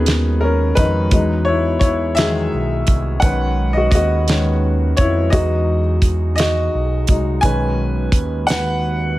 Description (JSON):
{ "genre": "slow six-eight R&B", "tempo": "57 BPM (dotted quarters)", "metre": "6/8", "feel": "straight", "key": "B major", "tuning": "A4 = 440 Hz", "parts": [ { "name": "warm grand piano", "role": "accompaniment", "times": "0.0-9.2 s", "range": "D#3 to G#5", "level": "-19 LUFS", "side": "left 2 dB", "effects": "none" }, { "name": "glass harmonica", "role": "sustained chords", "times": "0.0-9.2 s", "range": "G#3 to B4", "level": "-28 LUFS", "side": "right 4 dB", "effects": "none" }, { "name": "smooth gliding synth bass", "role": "bass", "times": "0.0-9.2 s", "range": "B1 to E#2", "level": "-19 LUFS", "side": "equal", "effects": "none" }, { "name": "damped 70s drum kit", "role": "drums", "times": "0.1-8.7 s", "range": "hi-hat, kick drum, snare drum", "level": "-16 LUFS", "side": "right 1 dB", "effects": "none" } ], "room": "little or no reverb", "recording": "none", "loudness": "-14 LUFS", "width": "side -16 dB against mid", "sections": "0.0-9.2 A section", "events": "grand piano solo 0.0-9.2", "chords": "0.0 B69; 1.1 Emaj9; 3.2 B69; 5.3 Emaj9; 7.4 B69" }